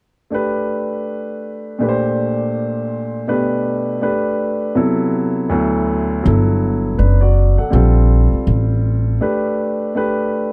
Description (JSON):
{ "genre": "hip hop", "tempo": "81 BPM", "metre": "4/4", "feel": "swing 61% on 16ths", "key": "G major", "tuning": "A4 = 440 Hz", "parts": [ { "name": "dark baby grand piano", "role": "accompaniment", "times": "0.3-10.5 s", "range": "D2 to F#5", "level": "-20 LUFS", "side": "equal", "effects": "none" }, { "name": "upright bass", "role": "bass", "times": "6.3-9.2 s", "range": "F#1 to Bb1", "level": "-15 LUFS", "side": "equal", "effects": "none" } ], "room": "moderate small room reverb, RT60 0.5 s", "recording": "none", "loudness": "-17 LUFS", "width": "mono", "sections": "0.3-10.5 A section", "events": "break 9.2-10.5", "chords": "0.3 Gadd9; 1.8 Bbmaj7; 3.3 Gadd9/B; 4.0 Gadd9; 4.8 Cmaj7; 5.5 Dadd9; 6.3 Gmaj9; 7.7 Bb5; 9.2 Gadd9" }